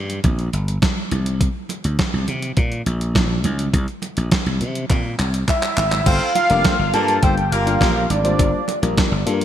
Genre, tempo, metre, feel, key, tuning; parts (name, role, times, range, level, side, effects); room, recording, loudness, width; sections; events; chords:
early-eighties boogie funk; 103 BPM; 4/4; straight; G dorian; A4 = 440 Hz
slap bass; bass; 0.0-9.4 s; F1 to C3; -21 LUFS; equal
clean 12-bit digital drum machine; drums; 0.1-9.4 s; crash cymbal, handclaps, hi-hat, kick drum, snare drum; -21 LUFS; equal; gated reverb
congas; percussion; 0.2-9.1 s; -30 LUFS; right 7 dB
fat analog lead; melody; 5.5-8.8 s; D5 to A5; -20 LUFS; right 1 dB; chorus, phaser, digital delay
clear horn section; second line; 6.1-8.0 s; Bb3 to D5; -25 LUFS; equal
FM electric piano; accompaniment; 6.5-9.4 s; G3 to C5; -24 LUFS; left 5 dB; chorus
light reverb; bright 1980s-style digital production; -17 LUFS; side -10 dB against mid
0.0-6.1 A section; 6.1-9.4 B section
drum fill 4.9-6.1
0.0 Gm; 1.1 C7; 6.1 Gm7